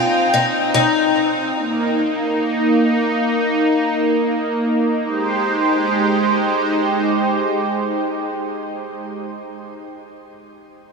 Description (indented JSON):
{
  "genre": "dream pop",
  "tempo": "free time",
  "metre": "none",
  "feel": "none",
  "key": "Ab major",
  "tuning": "A4 = 440 Hz",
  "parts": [
    { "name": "warm analog pad", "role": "sustained chords", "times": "0.0-9.5 s", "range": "Ab3 to G5", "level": "-18 LUFS", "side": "right 1 dB", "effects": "chorus, shimmer reverb" },
    { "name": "picked twelve-string acoustic guitar", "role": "arpeggios", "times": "0.0-1.6 s", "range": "Eb4 to F4", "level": "-19 LUFS", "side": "left 4 dB", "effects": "wide subtle chorus, tape echo, shimmer reverb" }
  ],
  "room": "wet huge ambient reverb, RT60 7.3 s",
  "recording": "small room ambience",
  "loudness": "-16 LUFS",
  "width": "side -4 dB against mid",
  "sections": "0.0-5.1 A section; 5.1-8.8 B section",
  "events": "slowing down 0.0-5.1",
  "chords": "0.0 Abmaj7 (rootless); 1.6 Bbsus4; 5.1 Abmaj7"
}